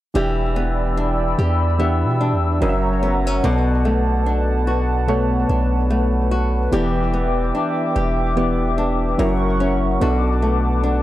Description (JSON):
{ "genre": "R&B", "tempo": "73 BPM", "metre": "4/4", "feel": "swing 58% on 16ths", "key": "unclear", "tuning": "A4 = 441 Hz", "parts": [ { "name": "soft electric-piano-like synth keys", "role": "accompaniment", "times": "0.1-11.0 s", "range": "B2 to E5", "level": "-23 LUFS", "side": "equal", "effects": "chorus" }, { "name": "flamenco guitar", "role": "arpeggios", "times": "0.1-11.0 s", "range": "F#2 to G4", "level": "-24 LUFS", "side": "left 1 dB", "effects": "tape echo" }, { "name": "hollow soft pad", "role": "sustained chords", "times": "0.2-11.0 s", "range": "A#4 to E6", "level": "-24 LUFS", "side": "equal", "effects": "chorus" }, { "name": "long sustained 808-style bass", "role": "bass", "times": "0.2-11.0 s", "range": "E1 to B2", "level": "-20 LUFS", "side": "equal", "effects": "none" } ], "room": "digital ambience", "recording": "dry, gritty hardware recording", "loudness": "-17 LUFS", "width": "side -14 dB against mid", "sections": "0.2-11.0 A section", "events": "none", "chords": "0.2 Em7; 2.6 F#7; 3.4 Bm7; 6.7 Em7; 9.2 F#7; 10.0 Bm7", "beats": "| 0.15 0.97 1.79 2.62 | 3.44 4.26 5.08 5.90 | 6.73 7.55 8.37 9.19 | 10.01 10.84" }